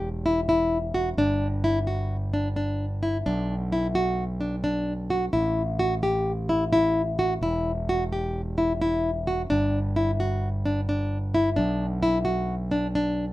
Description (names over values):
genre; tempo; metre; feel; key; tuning
contemporary instrumental, chamber music in an uneven meter; 259 BPM (eighths); 9/8; straight; B minor; A4 = 439 Hz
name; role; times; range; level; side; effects
nylon-string guitar; arpeggios; 0.0-13.2 s; D4 to G4; -25 LUFS; left 1 dB; none
growling fingered electric bass; bass; 0.0-13.3 s; E1 to B1; -28 LUFS; right 1 dB; overdrive
room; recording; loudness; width
moderate studio ambience, RT60 0.5 s; minimal, uncompressed stereo recording; -23 LUFS; side -16 dB against mid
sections
0.0-13.3 A section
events
none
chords
0.0 Esus2; 1.2 G5; 3.3 Bm; 5.3 A5; 7.4 Emadd9; 9.5 G5; 11.6 Bm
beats
0.02 0.25 0.48 0.71 0.94 | 1.17 1.41 1.64 1.87 2.10 2.33 2.56 2.79 3.02 | 3.25 3.49 3.72 3.95 4.18 4.41 4.64 4.87 5.11 | 5.34 5.57 5.80 6.03 6.26 6.49 6.72 6.96 7.19 | 7.42 7.65 7.88 8.11 8.34 8.57 8.80 9.04 9.27 | 9.50 9.73 9.96 10.19 10.43 10.66 10.89 11.12 11.35 | 11.58 11.81 12.04 12.28 12.51 12.74 12.97 13.20